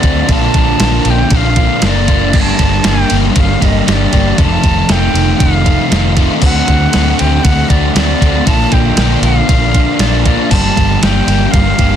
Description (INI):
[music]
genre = rock, shoegaze and dream pop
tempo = 118 BPM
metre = 4/4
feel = straight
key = G minor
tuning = A4 = 440 Hz
[part]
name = silver concert flute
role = melody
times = 0.0-12.0 s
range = D5 to A5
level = -18 LUFS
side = right 1 dB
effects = slapback echo
[part]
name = crunchy overdriven guitar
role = riff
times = 0.0-12.0 s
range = F2 to G4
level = -16 LUFS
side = left 13 dB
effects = analog chorus
[part]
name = overdriven semi-hollow guitar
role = riff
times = 0.0-12.0 s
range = F2 to G4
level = -17 LUFS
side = right 13 dB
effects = reverse reverb
[part]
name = vintage muted fingered electric bass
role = bass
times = 0.0-12.0 s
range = F1 to D2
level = -14 LUFS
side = equal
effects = none
[part]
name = crisp 8-bit digital drum machine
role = drums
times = 0.0-11.9 s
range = crash cymbal, kick drum, ride cymbal, snare drum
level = -14 LUFS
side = equal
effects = none
[part]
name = twelve-string electric guitar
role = arpeggios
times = 10.5-12.0 s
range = F3 to D4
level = -24 LUFS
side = right 15 dB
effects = lush chorus, slapback echo
[sound]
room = digital ambience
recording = dense, heavily limited modern master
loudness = -9 LUFS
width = side -9 dB against mid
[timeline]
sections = 0.0-12.0 A section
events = none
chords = 0.3 Bbmaj7; 2.3 Gm; 4.4 F5; 6.4 D7; 8.5 Bb; 10.5 Gm7